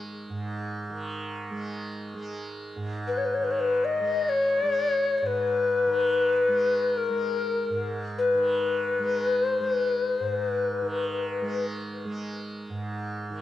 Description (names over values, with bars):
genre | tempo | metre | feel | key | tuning
world meditative, free-time meditation music | free time | none | none | G# minor | A4 = 439 Hz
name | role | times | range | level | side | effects
tanpura | drone | 0.0-13.4 s | G#2 to G#3 | -34 LUFS | right 2 dB | cassette tape
hollow Native American-style cedar flute | melody | 3.1-11.7 s | A#4 to D#5 | -24 LUFS | left 3 dB | tape echo
room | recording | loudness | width
wet studio reverb, RT60 0.6 s | home recording on cassette | -24 LUFS | side -12 dB against mid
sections
0.0-13.4 A section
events
none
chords
none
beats
free time